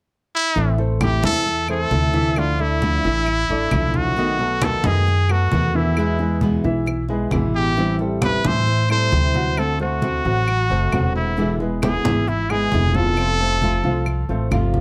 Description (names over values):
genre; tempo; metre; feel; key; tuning
latin, Cuban son and guajira; 133 BPM; 4/4; straight; A minor; A4 = 439 Hz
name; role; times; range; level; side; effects
bright trumpet; melody; 0.3-14.5 s; E4 to C5; -24 LUFS; equal; none
nylon-string guitar; accompaniment; 0.6-14.8 s; B2 to F#4; -27 LUFS; equal; none
warm baby grand piano; arpeggios; 0.6-14.8 s; D#3 to F#5; -28 LUFS; equal; none
upright bass; bass; 0.6-14.8 s; E1 to A2; -24 LUFS; equal; none
congas; percussion; 0.6-14.8 s; none; -28 LUFS; equal; none
claves; percussion; 1.0-14.7 s; none; -34 LUFS; equal; none
room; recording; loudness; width
light reverb; close, detailed microphones; -20 LUFS; mono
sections
0.6-14.8 A section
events
none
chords
0.0 N.C.; 0.6 Am; 2.4 Dmadd9; 4.2 B7; 6.0 E; 7.8 Am7; 9.6 D7; 11.4 E7; 13.2 F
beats
0.11 | 0.56 1.01 1.46 1.91 | 2.36 2.81 3.27 3.72 | 4.17 4.62 5.07 5.52 | 5.97 6.42 6.87 7.32 | 7.77 8.22 8.67 9.12 | 9.57 10.02 10.47 10.92 | 11.37 11.82 12.27 12.72 | 13.17 13.62 14.07 14.52